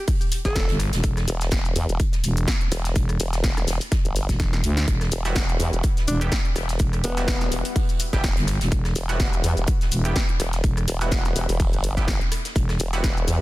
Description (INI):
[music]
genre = bass house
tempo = 125 BPM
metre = 4/4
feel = swing 55% on 16ths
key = E minor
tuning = A4 = 440 Hz
[part]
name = mellow alto saxophone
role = melody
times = 0.0-0.8, 6.1-7.5 s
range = B3 to A4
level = -31 LUFS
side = left 1 dB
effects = ping-pong delay
[part]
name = big-room dance drum kit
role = drums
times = 0.1-13.4 s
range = hi-hat, rim click, shaker, snare drum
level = -30 LUFS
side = left 1 dB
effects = none
[part]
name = electronic kick drum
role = drums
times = 0.1-13.1 s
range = none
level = -23 LUFS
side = equal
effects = none
[part]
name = unplugged drum kit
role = drums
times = 0.1-13.4 s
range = hi-hat, snare drum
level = -38 LUFS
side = right 3 dB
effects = none
[part]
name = formant-sweep wobble bass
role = bass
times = 0.5-13.4 s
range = E1 to E2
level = -24 LUFS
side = equal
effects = chorus, sidechain pumping
[part]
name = growling FM bass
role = bass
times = 0.7-12.8 s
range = E1 to D2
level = -23 LUFS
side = equal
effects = tube saturation, sidechain pumping
[part]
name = band-passed chord stab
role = stabs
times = 5.2-13.4 s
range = G3 to G4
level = -32 LUFS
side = right 3 dB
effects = chorus, cassette tape, sidechain pumping, ping-pong delay
[sound]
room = studio reverb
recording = dense, heavily limited modern master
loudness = -20 LUFS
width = side -18 dB against mid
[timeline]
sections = 0.0-13.4 A section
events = drum fill 4.4-4.9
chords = 0.0 Emadd9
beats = 0.08 0.56 | 1.04 1.52 2.00 2.48 | 2.96 3.44 3.92 4.40 | 4.88 5.36 5.84 6.32 | 6.80 7.28 7.76 8.24 | 8.72 9.20 9.68 10.16 | 10.64 11.12 11.60 12.08 | 12.56 13.04